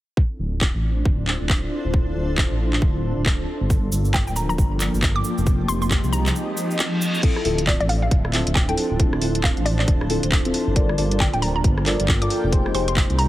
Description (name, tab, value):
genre	UK garage, two-step garage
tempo	136 BPM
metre	4/4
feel	swing 61% on 16ths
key	D minor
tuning	A4 = 440 Hz
part	warm analog pad	sustained chords	0.2-13.3 s	F3 to A5	-33 LUFS	equal	lush chorus, sidechain pumping
part	electronic kick drum	drums	0.2-13.1 s	none	-20 LUFS	equal	none
part	granular cloud pad	texture	0.5-13.3 s	F3 to G5	-28 LUFS	equal	built-in reverb, sidechain pumping
part	dark detuned saw bass	bass	0.4-13.3 s	D1 to C2	-23 LUFS	equal	tube saturation
part	garage drum kit	drums	0.6-13.3 s	crash cymbal, handclaps, hi-hat, rim click	-26 LUFS	equal	none
part	cabasa	percussion	3.7-7.2 s	none	-33 LUFS	right 2 dB	none
part	hollow square pluck	melody	4.1-13.3 s	D5 to D6	-28 LUFS	equal	chorus, digital delay
part	reverse cymbal	sound effects	6.5-7.2 s	none	-30 LUFS	equal	none
part	deep mellow chord stab	stabs	7.2-13.3 s	C4 to D5	-26 LUFS	left 2 dB	chorus, phaser, digital delay
room	light reverb, digital ambience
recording	heavily compressed radio sound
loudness	-18 LUFS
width	side -15 dB against mid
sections	0.2-7.2 A section; 7.2-13.3 B section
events	filter sweep on analog synth pad 0.2-7.2; break 6.3-7.2; reverse cymbal 6.5-7.2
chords	0.2 Dm7; 3.7 Gm7; 5.5 Fm7; 7.2 Dm7; 10.8 Gm7; 12.5 Fm7